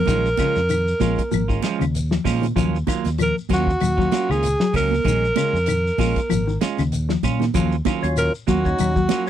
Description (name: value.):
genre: afrobeat.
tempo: 96 BPM.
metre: 4/4.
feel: swing 55% on 16ths.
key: Eb minor.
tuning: A4 = 440 Hz.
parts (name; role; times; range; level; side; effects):
breathy alto saxophone; melody; 0.0-9.2 s; Gb4 to Bb4; -22 LUFS; right 1 dB; none.
mellow electric guitar; arpeggios; 0.0-9.2 s; Db3 to Gb3; -25 LUFS; left 7 dB; none.
clean electric guitar; stabs; 0.1-9.3 s; F3 to F4; -26 LUFS; right 10 dB; none.
fingered electric bass; bass; 0.1-9.0 s; Ab1 to Bb2; -23 LUFS; equal; none.
warm soul drum kit; drums; 0.1-9.3 s; hi-hat, kick drum, snare drum; -26 LUFS; equal; none.
congas; percussion; 0.1-9.3 s; none; -27 LUFS; right 18 dB; none.
shekere; percussion; 0.1-9.3 s; none; -33 LUFS; left 4 dB; none.
claves; percussion; 0.4-9.0 s; none; -34 LUFS; left 31 dB; none.
percussive tonewheel organ; accompaniment; 8.0-9.3 s; Gb3 to F4; -26 LUFS; left 2 dB; slow rotary speaker, overdrive.
room: little or no reverb.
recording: none.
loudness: -18 LUFS.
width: side -10 dB against mid.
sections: 0.0-9.3 A section.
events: none.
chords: 0.1 Bbm7; 2.6 Ebm9; 5.1 Bbm7; 7.5 Ebm9.